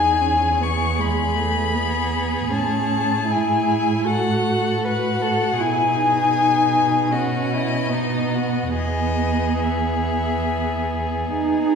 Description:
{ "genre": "classical, slow romantic movement for string quartet", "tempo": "69-80 BPM", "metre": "4/4", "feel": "rubato", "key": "E major", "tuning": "A4 = 439 Hz", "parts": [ { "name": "rich violin", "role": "melody", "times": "0.0-11.3 s", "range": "D#5 to C#6", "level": "-23 LUFS", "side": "left 5 dB", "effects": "none" }, { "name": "rich violin", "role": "second line", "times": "0.0-11.8 s", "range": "D#4 to B4", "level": "-25 LUFS", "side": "left 1 dB", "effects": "none" }, { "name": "warm viola", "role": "accompaniment", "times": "0.0-11.8 s", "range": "G#3 to F#4", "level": "-25 LUFS", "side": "right 2 dB", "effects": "none" }, { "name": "warm cello", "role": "bass", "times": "0.0-11.8 s", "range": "E2 to D#4", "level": "-24 LUFS", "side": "right 2 dB", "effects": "none" } ], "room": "wet recital hall reverb, RT60 1.4 s", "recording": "heard from further back in the room", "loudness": "-18 LUFS", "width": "side -6 dB against mid", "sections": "0.0-11.8 A section", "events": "none", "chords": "0.0 E; 2.5 F#m/A; 5.6 E/B; 7.1 Badd9; 8.8 E" }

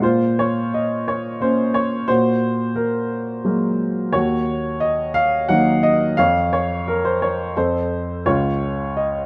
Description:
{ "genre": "classical, lyrical solo piano", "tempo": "88 BPM", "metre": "3/4", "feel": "rubato", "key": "Bb minor", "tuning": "A4 = 440 Hz", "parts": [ { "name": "warm baby grand piano", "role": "solo", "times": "0.0-9.3 s", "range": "Db2 to Gb5", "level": "-20 LUFS", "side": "equal", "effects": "none" } ], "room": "light reverb", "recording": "close, detailed microphones", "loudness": "-20 LUFS", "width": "mono", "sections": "0.0-9.3 A section", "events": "none", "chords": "0.0 Bbm; 2.1 Gbadd9/Bb; 4.1 Ebm; 6.2 Bbmadd9/F; 7.6 F; 8.3 Db" }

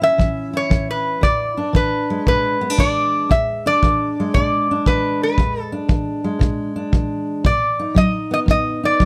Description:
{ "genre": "acoustic country blues, solo or duo", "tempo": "116 BPM", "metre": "4/4", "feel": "swing 68% on 8ths", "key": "E mixolydian", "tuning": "A4 = 440 Hz", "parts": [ { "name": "lap resonator guitar", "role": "melody", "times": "0.0-9.1 s", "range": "B4 to E5", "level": "-21 LUFS", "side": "equal", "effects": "none" }, { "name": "fingerpicked steel-string acoustic guitar", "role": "accompaniment", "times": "0.0-9.1 s", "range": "E2 to E4", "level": "-24 LUFS", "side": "equal", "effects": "none" }, { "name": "kick drum", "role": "drums", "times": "0.2-9.1 s", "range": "none", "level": "-22 LUFS", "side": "equal", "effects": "none" } ], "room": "light reverb", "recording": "close, detailed microphones", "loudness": "-19 LUFS", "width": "mono", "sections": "0.0-9.1 A section", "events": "none", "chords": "0.0 A (rootless); 1.2 E7; 7.4 B" }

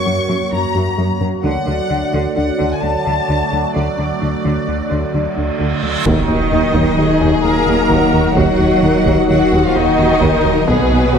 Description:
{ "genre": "cinematic, hybrid orchestral and electronic film score", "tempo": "130 BPM", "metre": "5/4", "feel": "straight", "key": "Eb minor", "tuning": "A4 = 445 Hz", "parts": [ { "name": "rich symphonic violin section", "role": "melody", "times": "0.0-11.2 s", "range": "B4 to Db6", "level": "-22 LUFS", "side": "left 4 dB", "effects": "none" }, { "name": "phased analog pad", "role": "sustained chords", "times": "0.0-11.2 s", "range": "Gb3 to Eb5", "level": "-21 LUFS", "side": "right 4 dB", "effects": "phaser, chorus" }, { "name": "harp-like synth pluck", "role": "arpeggios", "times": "0.1-11.2 s", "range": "D3 to B4", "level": "-24 LUFS", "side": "left 3 dB", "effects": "none" }, { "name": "plucky analog bass", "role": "riff", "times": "0.1-11.2 s", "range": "D2 to B2", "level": "-20 LUFS", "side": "left 2 dB", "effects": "none" }, { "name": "rich symphonic cello section", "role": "bass", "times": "0.1-11.2 s", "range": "Gb2 to Bb3", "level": "-22 LUFS", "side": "right 4 dB", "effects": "none" }, { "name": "reverse cymbal and impact", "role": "sound effects", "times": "5.1-8.4 s", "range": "none", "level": "-25 LUFS", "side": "right 2 dB", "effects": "none" }, { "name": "mellow French horn section", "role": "sustained chords", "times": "6.0-11.2 s", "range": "F#3 to Eb4", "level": "-21 LUFS", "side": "left 8 dB", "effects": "none" }, { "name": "rich symphonic viola section", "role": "accompaniment", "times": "6.1-11.2 s", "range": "B3 to Bb4", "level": "-20 LUFS", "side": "right 1 dB", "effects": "none" }, { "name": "rich symphonic double bass section", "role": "bass", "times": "6.1-11.2 s", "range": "B1 to Eb2", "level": "-24 LUFS", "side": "right 5 dB", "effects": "none" }, { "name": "warm sub bass", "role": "bass", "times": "6.1-11.2 s", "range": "Eb1 to B1", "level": "-25 LUFS", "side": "right 1 dB", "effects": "none" }, { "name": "warm tuba", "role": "bass", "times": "6.1-11.2 s", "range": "B1 to Eb2", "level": "-22 LUFS", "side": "right 4 dB", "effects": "none" }, { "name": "taiko ensemble", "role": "drums", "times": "6.1-11.1 s", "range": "none", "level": "-24 LUFS", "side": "equal", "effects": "none" }, { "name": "warm symphonic violin section", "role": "second line", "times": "7.0-11.2 s", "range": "Gb4 to Bb4", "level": "-20 LUFS", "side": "left 4 dB", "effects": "none" } ], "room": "wet scoring stage reverb, RT60 1.5 s", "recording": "none", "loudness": "-13 LUFS", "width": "side -7 dB against mid", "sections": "0.0-6.1 A section; 6.1-11.2 A section", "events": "reverse cymbal 5.1-6.1; impact 6.1-8.4", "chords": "0.0 Gb; 1.4 D; 6.1 Ebm; 10.7 B" }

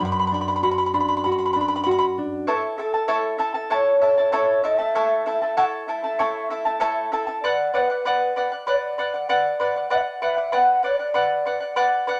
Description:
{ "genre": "andean folk", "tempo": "97 BPM", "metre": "4/4", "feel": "straight", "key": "unclear", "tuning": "A4 = 441 Hz", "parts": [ { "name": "charango", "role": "accompaniment", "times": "0.0-12.2 s", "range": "E4 to B5", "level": "-25 LUFS", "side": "equal", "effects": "none" }, { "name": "nylon-string guitar", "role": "accompaniment", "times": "0.0-2.5 s", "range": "F#2 to F#4", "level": "-26 LUFS", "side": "equal", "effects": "none" }, { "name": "mellow hollow bass bansuri", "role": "melody", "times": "2.5-12.0 s", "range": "A4 to G5", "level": "-24 LUFS", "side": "equal", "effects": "none" } ], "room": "wet studio reverb, RT60 0.7 s", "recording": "none", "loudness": "-22 LUFS", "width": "mono", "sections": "0.0-2.5 A section; 2.5-12.2 B section", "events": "charango solo 0.0-2.5", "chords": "0.0 Bm; 2.5 A; 7.4 Bm" }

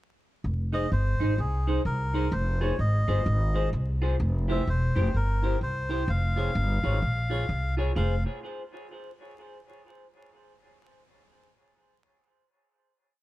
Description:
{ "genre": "ska", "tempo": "128 BPM", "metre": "4/4", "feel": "swing 61% on 8ths", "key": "F minor", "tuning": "A4 = 439 Hz", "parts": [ { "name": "upright bass", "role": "bass", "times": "0.4-8.2 s", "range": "E1 to C2", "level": "-25 LUFS", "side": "equal", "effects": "none" }, { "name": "melodica", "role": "melody", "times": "0.7-8.2 s", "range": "Ab4 to F5", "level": "-33 LUFS", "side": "left 1 dB", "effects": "none" }, { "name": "semi-hollow electric guitar", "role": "accompaniment", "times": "0.7-8.1 s", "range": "Eb4 to Db5", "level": "-33 LUFS", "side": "equal", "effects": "phaser, dub echo" } ], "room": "studio reverb", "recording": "dark, warm production, vinyl crackle", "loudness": "-24 LUFS", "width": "side -16 dB against mid", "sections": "0.4-8.0 head; 8.0-9.8 final chord", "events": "none", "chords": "0.4 Ab/F; 2.3 Fm; 4.2 C; 6.1 Db/F; 8.0 Fm" }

